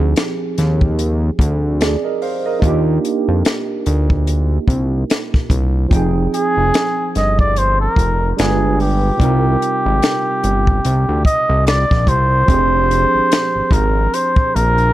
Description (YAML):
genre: R&B, neo-soul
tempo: 73 BPM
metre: 4/4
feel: swing 57% on 16ths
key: F dorian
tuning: A4 = 441 Hz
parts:
  - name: barky tine electric piano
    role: accompaniment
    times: 0.0-14.9 s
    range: C3 to G5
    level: -21 LUFS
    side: right 4 dB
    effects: lush chorus
  - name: fat analog bass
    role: bass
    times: 0.0-14.9 s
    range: F1 to F2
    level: -16 LUFS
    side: equal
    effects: none
  - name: compact cocktail drum kit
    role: drums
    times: 0.2-14.9 s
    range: finger snaps, hi-hat, kick drum, snare drum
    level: -18 LUFS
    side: equal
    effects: none
  - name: trumpet with cup mute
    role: melody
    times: 6.3-14.9 s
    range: G4 to Eb5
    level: -16 LUFS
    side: equal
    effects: none
room: small room ambience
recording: dark, warm production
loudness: -13 LUFS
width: side -15 dB against mid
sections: 0.0-12.5 A section; 12.5-14.9 B section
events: none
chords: 0.0 Fm7; 2.6 Ebmaj9; 5.9 Fm7; 8.4 G7b9; 9.2 Cm11; 12.5 Fm69